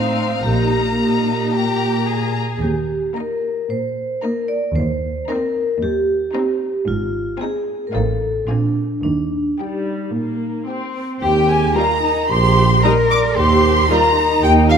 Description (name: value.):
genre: cinematic, playful, whimsical film cue.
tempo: 112 BPM.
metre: 4/4.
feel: straight.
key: Eb major.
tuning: A4 = 438 Hz.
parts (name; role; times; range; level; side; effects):
rich chamber violin section; melody; 0.0-14.0 s; Bb4 to Bb5; -28 LUFS; left 7 dB; none.
vibraphone with hard mallets; melody; 0.0-14.8 s; D4 to D5; -22 LUFS; equal; none.
rich chamber violin section; second line; 0.0-14.8 s; Eb4 to D6; -24 LUFS; left 3 dB; none.
rich chamber viola section; accompaniment; 0.0-14.0 s; G3 to Eb4; -26 LUFS; left 1 dB; none.
rich studio cello section; bass; 0.0-14.8 s; Eb2 to Bb4; -23 LUFS; equal; none.
rich chamber double bass section; bass; 0.4-14.8 s; Ab1 to Eb2; -20 LUFS; right 3 dB; none.
hollow small flute group; second line; 11.2-14.8 s; F5 to D6; -18 LUFS; equal; none.
warm tuba; bass; 11.2-14.8 s; Bb1 to Eb2; -22 LUFS; right 3 dB; none.
room: moderate scoring stage reverb, RT60 1.9 s.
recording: none.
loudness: -16 LUFS.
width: side -7 dB against mid.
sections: 0.0-11.2 A section; 11.2-14.8 A section.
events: none.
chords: 0.5 Eb/Bb; 2.6 Eb; 4.8 Cm7/Eb; 6.9 Fm7/Ab; 7.9 F7/A; 8.5 Bb9; 9.0 Eb; 13.4 Cm7/Eb.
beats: | 0.45 0.99 1.53 2.07 | 2.62 3.16 3.69 4.23 | 4.76 5.29 5.82 6.35 | 6.88 7.41 7.94 8.48 | 9.03 9.58 10.13 10.68 | 11.22 11.76 12.30 12.84 | 13.37 13.90 14.43.